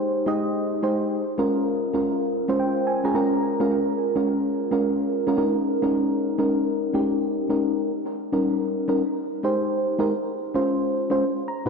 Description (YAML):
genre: R&B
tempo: 108 BPM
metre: 4/4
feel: swing 64% on 16ths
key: unclear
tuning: A4 = 442 Hz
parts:
  - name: mellow FM electric piano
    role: solo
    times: 0.0-11.7 s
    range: A#2 to Bb5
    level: -21 LUFS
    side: equal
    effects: chorus, tape echo
room: wet plate reverb, RT60 2.9 s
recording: dreamy mix soaked in reverb, nothing above 8.0 kHz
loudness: -21 LUFS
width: side -5 dB against mid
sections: 0.0-7.9 A section; 7.9-11.7 B section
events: FM electric piano fill 2.3-3.4, 11.2-11.7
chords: 0.0 Abmaj7; 1.2 Db6; 3.1 Bbm7; 5.4 Eb7sus4; 7.9 Eb7; 9.0 Abmaj7; 10.1 Dbmaj7